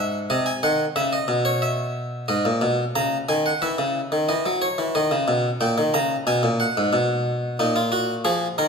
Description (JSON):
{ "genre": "classical, baroque-style two-part invention for harpsichord", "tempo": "91 BPM", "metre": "4/4", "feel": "straight", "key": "G# minor", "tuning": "A4 = 436 Hz", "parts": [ { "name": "harpsichord", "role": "solo", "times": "0.0-8.7 s", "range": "G#2 to A#5", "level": "-20 LUFS", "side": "equal", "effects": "none" } ], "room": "wet recital hall reverb, RT60 1.7 s", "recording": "minimal, uncompressed stereo recording", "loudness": "-20 LUFS", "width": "side -5 dB against mid", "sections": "0.0-2.3 A section; 2.3-8.7 B section", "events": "none", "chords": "0.0 G#; 1.0 C#m; 2.3 G#m; 3.6 C#m; 4.9 D#; 6.3 G#m; 7.6 D#m/A#" }